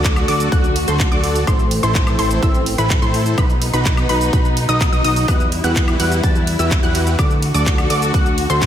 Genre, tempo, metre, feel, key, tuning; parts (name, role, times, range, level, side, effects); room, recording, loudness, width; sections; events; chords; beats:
EDM, festival progressive house; 126 BPM; 4/4; straight; E minor; A4 = 440 Hz
dark symphonic string section; sustained chords; 0.0-8.7 s; D3 to F#4; -24 LUFS; left 1 dB; sidechain pumping
wide unison pluck; arpeggios; 0.0-8.6 s; B5 to A6; -23 LUFS; equal; sidechain pumping, analog delay
dense compressed supersaw; riff; 0.0-8.6 s; D#4 to A5; -22 LUFS; equal; cassette tape, sidechain pumping, analog delay
fat analog bass; bass; 0.0-8.7 s; A1 to A2; -20 LUFS; equal; sidechain pumping
electronic kick drum; drums; 0.0-8.7 s; -17 LUFS; equal; studio reverb
pop drum kit; drums; 0.0-8.7 s; handclaps, hi-hat, ride cymbal, shaker, woodblock; -25 LUFS; equal; studio reverb
downlifter; sound effects; 0.0-1.5 s; barely audible
moderate lush hall reverb, RT60 1.7 s; dreamy mix soaked in reverb; -14 LUFS; side -10 dB against mid
0.0-8.7 A section
0.0 D; 1.5 Am; 3.4 B; 5.3 Emadd9; 7.2 D
0.04 0.52 1.00 | 1.47 1.95 2.43 2.90 | 3.38 3.85 4.33 4.81 | 5.28 5.76 6.24 6.71 | 7.19 7.66 8.14 8.62